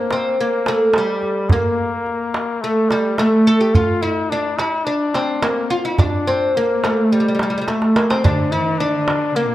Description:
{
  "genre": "Arabic maqam ensemble",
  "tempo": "107 BPM",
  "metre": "4/4",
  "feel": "straight",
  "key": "D maqam bayati",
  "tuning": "A4 = 441 Hz",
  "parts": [
    { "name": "oud", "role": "melody", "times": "0.0-9.5 s", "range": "G3 to A4", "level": "-18 LUFS", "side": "equal", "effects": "none" },
    { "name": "breathy trumpet", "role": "second line", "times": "0.0-9.5 s", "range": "G3 to F4", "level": "-23 LUFS", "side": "left 4 dB", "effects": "none" },
    { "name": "darbuka", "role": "percussion", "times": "0.1-9.2 s", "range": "none", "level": "-20 LUFS", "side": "right 2 dB", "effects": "none" },
    { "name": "rich symphonic cello section", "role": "second line", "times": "8.2-9.5 s", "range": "Bb2 to E3-50c", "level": "-23 LUFS", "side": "equal", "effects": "none" }
  ],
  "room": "moderate recital hall reverb, RT60 1.7 s",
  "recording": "dark, warm production",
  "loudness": "-15 LUFS",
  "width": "side -14 dB against mid",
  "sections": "0.0-9.5 A section",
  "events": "drum fill 7.7-8.2",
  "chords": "none",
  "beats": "0.38 0.94 | 1.50 2.06 2.62 3.18 | 3.74 4.30 4.86 5.42 | 5.99 6.55 7.11 7.67 | 8.23 8.79 9.35"
}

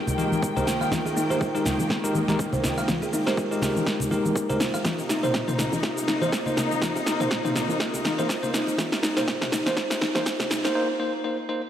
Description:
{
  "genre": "afro house",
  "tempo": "122 BPM",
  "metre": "4/4",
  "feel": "swing 56% on 16ths",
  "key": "F minor",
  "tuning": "A4 = 440 Hz",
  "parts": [
    { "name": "muted studio string section", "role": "sustained chords", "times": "0.0-10.7 s", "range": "C3 to G5", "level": "-30 LUFS", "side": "equal", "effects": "sidechain pumping, low-pass filter" },
    { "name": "bell-like tine electric piano", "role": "stabs", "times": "0.0-11.6 s", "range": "Ab3 to C5", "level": "-30 LUFS", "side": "left 1 dB", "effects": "medium stereo tremolo, sidechain pumping, analog delay" },
    { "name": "deep house drum kit", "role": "drums", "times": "0.1-10.7 s", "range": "shaker, snare drum, toms", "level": "-28 LUFS", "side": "right 1 dB", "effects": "overdrive" },
    { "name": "congas", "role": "percussion", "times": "0.1-10.7 s", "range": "none", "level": "-31 LUFS", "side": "left 2 dB", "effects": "none" },
    { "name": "woody FM bass", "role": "bass", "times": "0.4-10.2 s", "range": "Eb1 to C2", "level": "-32 LUFS", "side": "right 1 dB", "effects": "none" },
    { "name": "electronic kick drum", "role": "drums", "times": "0.4-10.4 s", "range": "none", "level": "-33 LUFS", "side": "right 1 dB", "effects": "none" },
    { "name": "buzzing kalimba", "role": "arpeggios", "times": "0.6-10.7 s", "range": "Eb4 to F5", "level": "-28 LUFS", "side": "right 1 dB", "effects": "sidechain pumping, low-pass filter, analog delay" }
  ],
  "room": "moderate lush hall reverb, RT60 2.5 s",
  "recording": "dry, gritty hardware recording, high-pass filter",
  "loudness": "-22 LUFS",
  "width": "side -10 dB against mid",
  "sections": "0.0-11.7 A section",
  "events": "build-up 0.0-11.7; drum fill 0.0-10.8",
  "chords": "0.0 Fm11; 4.9 Cm7",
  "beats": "0.43 | 0.92 1.41 1.90 2.39 | 2.89 3.38 3.87 4.36 | 4.85 5.34 5.84 6.33 | 6.82 7.31 7.80 8.30 | 8.79 9.28 9.77 10.26 | 10.76 11.25"
}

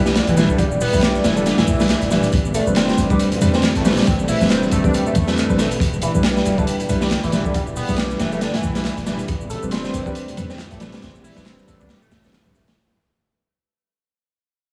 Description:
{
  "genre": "breakbeat, breaks",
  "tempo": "138 BPM",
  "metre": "4/4",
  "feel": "swing 57% on 16ths",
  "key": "unclear",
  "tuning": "A4 = 439 Hz",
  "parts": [
    { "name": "dark analog pad", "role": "sustained chords", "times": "0.0-12.7 s", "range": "A3 to G5", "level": "-30 LUFS", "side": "equal", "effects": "chorus, sidechain pumping" },
    { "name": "dark baby grand piano", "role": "stabs", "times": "0.0-12.5 s", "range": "G3 to B4", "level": "-25 LUFS", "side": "equal", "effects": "tape echo" },
    { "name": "warm 808-style bass", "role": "bass", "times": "0.0-12.7 s", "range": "E1 to E2", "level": "-27 LUFS", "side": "equal", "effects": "none" },
    { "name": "overdriven synth lead", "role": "riff", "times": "0.1-12.6 s", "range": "D3 to E4", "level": "-27 LUFS", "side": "equal", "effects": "phaser, tube saturation, analog chorus, cassette tape, tape echo" },
    { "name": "crunchy breakbeat drum kit", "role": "drums", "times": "0.1-12.8 s", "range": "hi-hat, kick drum, snare drum", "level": "-24 LUFS", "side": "equal", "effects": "none" },
    { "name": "electronic shaker and handclaps", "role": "drums", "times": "0.1-12.7 s", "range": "none", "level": "-34 LUFS", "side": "equal", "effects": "none" },
    { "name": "congas", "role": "percussion", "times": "0.1-12.6 s", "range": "none", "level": "-31 LUFS", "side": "equal", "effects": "none" }
  ],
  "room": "light reverb, small room ambience",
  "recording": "heavily compressed radio sound, multiband compression, vinyl crackle",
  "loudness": "-19 LUFS",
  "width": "mono",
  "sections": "0.0-12.8 A section",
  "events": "drop 0.0-12.8; fade-out 5.8-12.8",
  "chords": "0.0 Em7; 2.3 Am11; 5.8 Em7; 9.3 Am11",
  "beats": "0.16 | 0.59 1.02 1.46 1.90 | 2.33 2.77 3.20 3.63 | 4.07 4.50 4.94 5.37 | 5.81 6.24 6.68 7.11 | 7.55 7.98 8.42 8.85 | 9.29 9.72 10.16 10.59 | 11.03 11.46 11.89 12.33"
}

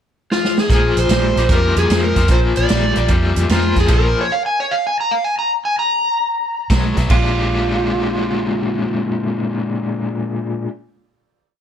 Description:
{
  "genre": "electric blues shuffle",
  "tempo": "150 BPM",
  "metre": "4/4",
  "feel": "swing 68% on 8ths",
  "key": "Bb mixolydian",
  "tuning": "A4 = 440 Hz",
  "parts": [
    { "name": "overdriven slide guitar", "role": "melody", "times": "0.3-6.7 s", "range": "F4 to Bb5", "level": "-18 LUFS", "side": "equal", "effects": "plate reverb" },
    { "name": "swinging big-band drum kit", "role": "drums", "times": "0.3-4.0, 6.7-7.2 s", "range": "crash cymbal, hi-hat, kick drum, snare drum", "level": "-18 LUFS", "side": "right 1 dB", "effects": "none" },
    { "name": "cranked stack guitar", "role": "riff", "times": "0.7-4.3, 6.7-10.7 s", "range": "Bb2 to G4", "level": "-20 LUFS", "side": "left 4 dB", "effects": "overdrive, tremolo" },
    { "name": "vintage muted fingered electric bass", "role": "bass", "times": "0.7-4.1, 6.7-10.6 s", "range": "Bb1 to F2", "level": "-19 LUFS", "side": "right 1 dB", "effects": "none" },
    { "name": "electric guitar through a small old amp", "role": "second line", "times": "7.1-10.6 s", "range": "F4", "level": "-24 LUFS", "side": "right 5 dB", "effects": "plate reverb" }
  ],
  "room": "light reverb",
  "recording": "none",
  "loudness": "-15 LUFS",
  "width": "side -9 dB against mid",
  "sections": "0.0-0.7 pickup bar; 0.7-7.1 head; 7.1-10.3 final chord",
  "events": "drum fill 0.3-0.7; stop 3.9-6.7",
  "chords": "0.0 N.C.; 0.7 Bb5; 6.7 B5; 7.1 Bb6",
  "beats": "0.29 | 0.69 1.09 1.49 1.89 | 2.29 2.69 3.10 3.50 | 3.90 4.30 4.70 5.10 | 5.50 5.90 6.30 6.70 | 7.10 7.50 7.90 8.30 | 8.70 9.10 9.50 9.89"
}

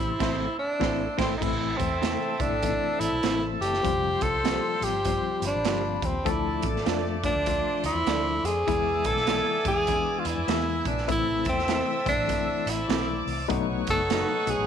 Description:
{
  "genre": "uptempo 1960s-style soul",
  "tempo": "99 BPM",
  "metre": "4/4",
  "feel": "swing 62% on 8ths",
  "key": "A minor",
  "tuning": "A4 = 440 Hz",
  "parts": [
    { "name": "breathy tenor saxophone", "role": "melody", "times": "0.0-14.7 s", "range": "C4 to A4", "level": "-27 LUFS", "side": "equal", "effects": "none" },
    { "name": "warm horn section", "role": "second line", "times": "0.0-14.7 s", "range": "F3 to G#5", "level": "-37 LUFS", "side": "right 1 dB", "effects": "slapback echo" },
    { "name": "warm studio string section", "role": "second line", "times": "0.0-14.7 s", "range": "A4 to E6", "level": "-37 LUFS", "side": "left 2 dB", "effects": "none" },
    { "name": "bright reed electric piano", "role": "accompaniment", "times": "0.0-14.7 s", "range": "E3 to A4", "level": "-32 LUFS", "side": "left 13 dB", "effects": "fast tremolo" },
    { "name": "mellow tonewheel organ", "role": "sustained chords", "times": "0.0-14.7 s", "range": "A3 to E6", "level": "-37 LUFS", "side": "equal", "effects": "slow rotary speaker" },
    { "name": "vintage muted fingered electric bass", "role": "bass", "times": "0.0-14.7 s", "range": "F1 to G#2", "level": "-34 LUFS", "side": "equal", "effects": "none" },
    { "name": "electric guitar through a small old amp", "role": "stabs", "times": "0.2-14.3 s", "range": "A3 to D5", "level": "-34 LUFS", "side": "right 12 dB", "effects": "ensemble chorus" },
    { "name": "raw garage drum kit", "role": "drums", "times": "0.2-14.6 s", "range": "crash cymbal, hi-hat, kick drum, snare drum", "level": "-31 LUFS", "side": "right 4 dB", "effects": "none" }
  ],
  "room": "light reverb, small room reverb",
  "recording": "1960s-style stereo with parts hard left and right",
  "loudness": "-24 LUFS",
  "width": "side -8 dB against mid",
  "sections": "0.0-1.4 A section; 1.4-14.7 B section",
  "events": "band accent 0.2-1.4",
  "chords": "0.0 Am; 3.8 Fsus2; 6.3 Dm; 8.7 E; 11.1 Am; 13.5 B7",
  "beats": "0.20 0.81 | 1.42 2.02 2.63 3.23 | 3.84 4.45 5.05 5.66 | 6.26 6.87 7.47 8.07 | 8.68 9.28 9.89 10.49 | 11.10 11.70 12.30 12.91 | 13.51 14.11"
}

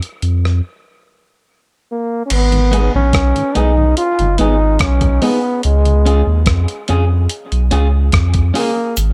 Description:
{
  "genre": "dub reggae",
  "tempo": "72 BPM",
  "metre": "4/4",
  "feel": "straight",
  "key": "G# dorian",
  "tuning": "A4 = 440 Hz",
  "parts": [
    { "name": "dusty soul sampler-style drum kit", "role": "drums", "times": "0.0-9.1 s", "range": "crash cymbal, hi-hat, kick drum, rim click", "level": "-21 LUFS", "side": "equal", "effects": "none" },
    { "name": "warm sub bass", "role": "bass", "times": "0.2-9.1 s", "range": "F#1 to E#2", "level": "-16 LUFS", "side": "equal", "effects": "none" },
    { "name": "warm trombone", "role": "melody", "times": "1.9-9.0 s", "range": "G#3 to E#4", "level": "-20 LUFS", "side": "equal", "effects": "dub echo" },
    { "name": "mellow tonewheel organ", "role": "accompaniment", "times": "2.5-5.9 s", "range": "G#2 to D#4", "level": "-27 LUFS", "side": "equal", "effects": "slow rotary speaker, low-pass filter" },
    { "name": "electric guitar at the edge of break-up", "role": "accompaniment", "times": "2.7-8.8 s", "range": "B3 to G#4", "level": "-24 LUFS", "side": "equal", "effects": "low-pass filter, dub echo" },
    { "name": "cabasa", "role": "percussion", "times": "9.0-9.1 s", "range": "none", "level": "-26 LUFS", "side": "equal", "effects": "none" }
  ],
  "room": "little or no reverb",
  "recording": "none",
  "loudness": "-15 LUFS",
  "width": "mono",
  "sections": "0.0-2.3 A section; 2.3-9.1 B section",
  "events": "break 0.0-2.3; part muted 2.3-9.0",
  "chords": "0.0 N.C.; 2.3 G#m; 5.6 C#",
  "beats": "0.64 1.47 | 2.31 3.14 3.97 4.80 | 5.64 6.47 7.30 8.13 | 8.97"
}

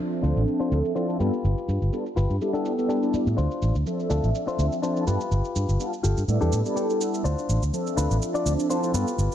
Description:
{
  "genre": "filtered disco house",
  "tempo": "124 BPM",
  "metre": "4/4",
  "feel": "swing 54% on 16ths",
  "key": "D dorian",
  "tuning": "A4 = 440 Hz",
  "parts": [
    { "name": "mellow synth brass", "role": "accompaniment", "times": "0.0-9.1 s", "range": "F3 to E5", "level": "-27 LUFS", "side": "equal", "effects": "chorus, phaser, low-pass filter" },
    { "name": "shaker", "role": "drums", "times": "0.1-9.3 s", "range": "none", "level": "-38 LUFS", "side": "right 4 dB", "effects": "low-pass filter on perc, low-pass filter on snare, low-pass filter on hats, low-pass filter on room" },
    { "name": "direct-recorded clean electric guitar", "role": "riff", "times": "0.2-9.3 s", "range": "D4 to D5", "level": "-30 LUFS", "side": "left 4 dB", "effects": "vintage 12-bit sampler grit, low-pass filter" },
    { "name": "fingered electric bass with an envelope filter", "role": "bass", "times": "0.2-9.3 s", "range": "G1 to A2", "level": "-23 LUFS", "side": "equal", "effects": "low-pass filter" }
  ],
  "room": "light reverb",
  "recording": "none",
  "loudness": "-22 LUFS",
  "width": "side -10 dB against mid",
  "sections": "0.0-9.3 A section",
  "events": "filter sweep on drum 0.0-9.3; filter sweep 0.0-9.3",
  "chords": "0.0 Dm7; 1.2 G7; 2.4 A7sus4; 3.4 Dm7; 5.1 G7; 6.3 A7sus4; 7.2 Dm7",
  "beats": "0.47 0.96 | 1.44 1.92 2.41 2.89 | 3.38 3.86 4.34 4.83 | 5.31 5.79 6.28 6.76 | 7.25 7.73 8.21 8.70 | 9.18"
}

